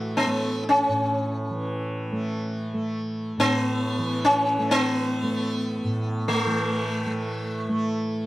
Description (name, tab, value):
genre	indian classical, Hindustani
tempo	free time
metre	none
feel	none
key	unclear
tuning	A4 = 440 Hz
part	sitar	melody	0.0-8.3 s	A3 to F#4	-24 LUFS	equal	none
part	tanpura	drone	0.0-8.3 s	A2 to A3	-27 LUFS	right 1 dB	none
room	small room ambience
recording	dry, close 1970s-style studio recording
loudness	-23 LUFS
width	side -16 dB against mid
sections	0.0-8.3 A section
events	none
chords	none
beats	free time